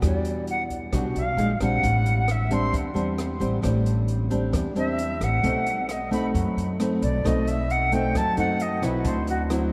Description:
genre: bossa nova.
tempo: 133 BPM.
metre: 4/4.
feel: straight.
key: unclear.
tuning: A4 = 440 Hz.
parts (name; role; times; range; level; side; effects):
breathy reedy jazz flute; melody; 0.0-9.4 s; F#4 to C6; -30 LUFS; equal; none.
nylon-string guitar; accompaniment; 0.0-9.7 s; A2 to F#4; -28 LUFS; equal; none.
upright bass; bass; 0.0-9.7 s; A1 to F#2; -29 LUFS; equal; none.
open jazz drum kit; drums; 0.0-9.6 s; hi-hat, kick drum, rim click; -36 LUFS; equal; none.
room: wet cathedral reverb, RT60 5.2 s.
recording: in a vast, echoing space.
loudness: -24 LUFS.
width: mono.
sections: 0.0-9.7 A section.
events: flute solo 0.0-9.7.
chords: 0.0 Em9; 1.4 A#m11; 1.8 Am7; 5.4 B7b9; 9.1 D9.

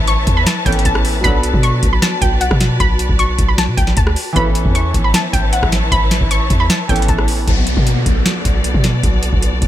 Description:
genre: hip hop, trap.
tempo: 154 BPM.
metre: 4/4.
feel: half-time.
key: B minor.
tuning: A4 = 438 Hz.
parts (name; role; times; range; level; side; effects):
warbly dusty pluck; melody; 0.0-7.5 s; F#5 to C#6; -20 LUFS; equal; chorus, ping-pong delay.
clear concert grand piano; accompaniment; 0.0-7.5 s; E3 to A4; -23 LUFS; right 1 dB; none.
warm symphonic string section; sustained chords; 0.0-9.7 s; B3 to A5; -23 LUFS; left 1 dB; none.
hard-hitting 808-style bass; bass; 0.0-9.7 s; A1 to B2; -17 LUFS; equal; none.
booming analog drum machine; drums; 0.1-9.7 s; hi-hat, kick drum, rim click, snare drum; -16 LUFS; equal; none.
mellow brass ensemble; stabs; 1.2-1.4, 4.4-4.5 s; B2 to F#3; -27 LUFS; right 3 dB; none.
downlifter; sound effects; 7.5-9.7 s; none; -23 LUFS; left 2 dB; none.
room: small room reverb.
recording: none.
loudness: -12 LUFS.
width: side -12 dB against mid.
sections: 0.0-7.5 A section; 7.5-9.7 B section.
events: none.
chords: 0.0 Aadd9; 1.2 Bm7; 4.4 Aadd9; 7.5 Bm7.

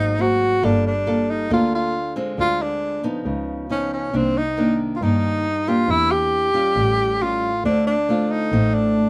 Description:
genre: bossa nova.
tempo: 137 BPM.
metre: 4/4.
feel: straight.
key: unclear.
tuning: A4 = 441 Hz.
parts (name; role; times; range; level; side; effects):
breathy tenor saxophone; melody; 0.0-9.1 s; C4 to G4; -23 LUFS; equal; none.
nylon-string guitar; accompaniment; 0.0-9.1 s; G2 to A4; -24 LUFS; equal; none.
muted double bass; bass; 0.0-9.1 s; G1 to G2; -29 LUFS; equal; none.
room: light reverb.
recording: band playing live in one room.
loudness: -20 LUFS.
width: mono.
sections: 0.0-9.1 A section.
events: none.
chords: 0.0 Ab9; 0.6 Gm9; 2.4 Dm7b5; 3.3 Db9; 4.1 Cm9; 5.9 Em7b5; 6.8 Aaug7; 7.6 Dm7.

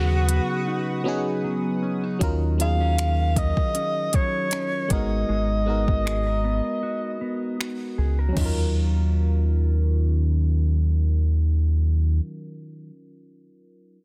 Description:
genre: contemporary R&B.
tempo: 78 BPM.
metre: 4/4.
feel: swing 54% on 16ths.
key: Eb minor.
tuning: A4 = 440 Hz.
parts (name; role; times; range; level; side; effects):
warm alto saxophone; melody; 0.0-7.6 s; Gb4 to F5; -30 LUFS; equal; low-pass filter, delay.
FM electric piano; accompaniment; 0.0-14.0 s; Gb3 to Bb4; -34 LUFS; equal; chorus, low-pass filter.
chorused pulse-width pad; sustained chords; 0.0-2.2 s; Cb5 to Eb6; -36 LUFS; equal; none.
mellow electric guitar; arpeggios; 0.0-13.0 s; Db3 to Bb4; -33 LUFS; equal; spring reverb, low-pass filter, delay.
rubbery square bass; bass; 0.0-12.2 s; Ab1 to Eb2; -23 LUFS; equal; none.
smooth R&B drum kit; drums; 0.3-8.6 s; crash cymbal, finger snaps, hi-hat, kick drum, toms; -28 LUFS; equal; overdrive.
room: little or no reverb.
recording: dense, heavily limited modern master.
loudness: -23 LUFS.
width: mono.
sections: 0.0-2.2 A section; 2.2-8.4 B section; 8.4-11.4 C section.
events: break 0.7-2.2, 6.8-8.4; filter sweep 2.2-8.4.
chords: 0.0 Db9sus4; 2.2 Ebm9; 4.9 Abm9; 8.4 Ebm9.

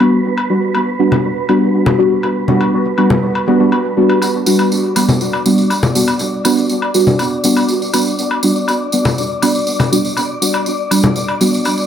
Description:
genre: dub techno.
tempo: 121 BPM.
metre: 4/4.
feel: straight.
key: unclear.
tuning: A4 = 440 Hz.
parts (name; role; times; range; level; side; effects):
deep mellow chord stab; stabs; 0.0-11.9 s; G3 to F#4; -14 LUFS; equal; chorus, phaser, dub echo.
woodblock and congas; percussion; 0.0-11.8 s; none; -18 LUFS; left 2 dB; dub echo.
wind-like tuned noise texture; texture; 0.0-11.9 s; B4 to D5; -23 LUFS; equal; built-in reverb.
tambourine; percussion; 4.2-11.9 s; none; -21 LUFS; right 2 dB; none.
room: wet echo chamber reverb, RT60 1.7 s, digital ambience.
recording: none.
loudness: -12 LUFS.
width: side -9 dB against mid.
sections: 0.0-11.9 A section.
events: none.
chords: 0.0 Gmaj7.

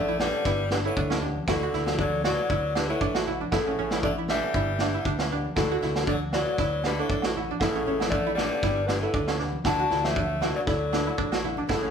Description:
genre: highlife guitar band.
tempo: 118 BPM.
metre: 4/4.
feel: swing 54% on 16ths.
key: D major.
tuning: A4 = 439 Hz.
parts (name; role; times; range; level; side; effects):
mellow electric guitar; melody; 0.0-11.9 s; E4 to A5; -29 LUFS; left 1 dB; none.
raspy tenor saxophone; second line; 0.0-11.9 s; C#3 to D4; -34 LUFS; left 4 dB; none.
string-like resonator pluck; arpeggios; 0.0-11.9 s; C#4 to F#4; -31 LUFS; right 5 dB; chorus.
fingered electric bass; bass; 0.0-11.9 s; G1 to D2; -33 LUFS; equal; none.
congas; percussion; 0.1-11.9 s; none; -39 LUFS; left 2 dB; none.
nylon-string guitar; accompaniment; 0.2-11.9 s; E3 to A4; -36 LUFS; left 6 dB; none.
vintage drum kit; drums; 0.2-11.8 s; kick drum, snare drum; -30 LUFS; left 1 dB; none.
agogo bells; percussion; 0.2-11.8 s; none; -35 LUFS; right 6 dB; none.
room: moderate large studio reverb, RT60 1.1 s.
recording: band playing live in one room.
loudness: -24 LUFS.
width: side -7 dB against mid.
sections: 0.0-11.9 A section.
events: none.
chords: 0.5 G6; 1.5 Dadd9; 3.5 A; 4.5 G6; 5.6 Dadd9; 7.6 A; 8.6 G6; 9.7 Dadd9.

